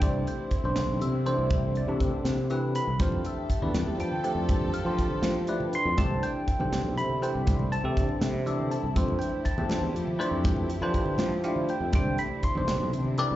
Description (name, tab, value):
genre	electric jazz fusion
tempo	80 BPM (dotted quarters)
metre	6/8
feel	straight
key	F lydian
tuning	A4 = 440 Hz
part	bell-like tine electric piano	accompaniment	0.0-13.4 s	E3 to C6	-30 LUFS	equal	fast stereo tremolo, phaser, slapback echo
part	dark chamber string section	sustained chords	0.0-13.4 s	C3 to A4	-37 LUFS	equal	none
part	sustaining fretless electric bass	bass	0.0-13.4 s	B1 to F3	-29 LUFS	equal	none
part	crisp fusion drum kit	drums	0.0-13.3 s	hi-hat, kick drum, snare drum	-30 LUFS	equal	none
part	congas	percussion	3.0-13.2 s	none	-36 LUFS	equal	none
room	small room reverb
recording	live gig heard through the venue's PA, club reverb, nothing above 7.7 kHz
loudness	-25 LUFS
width	side -14 dB against mid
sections	0.0-13.4 A section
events	tine electric piano fill 8.2-9.0, 11.2-11.9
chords	0.0 Cmaj9; 3.0 Fmaj9; 6.0 Cmaj9; 9.0 Fmaj9; 11.9 Cmaj9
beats	| 0.02 0.76 | 1.51 2.25 | 3.00 3.74 | 4.49 5.23 | 5.98 6.73 | 7.47 8.22 | 8.96 9.71 | 10.45 11.20 | 11.95 12.69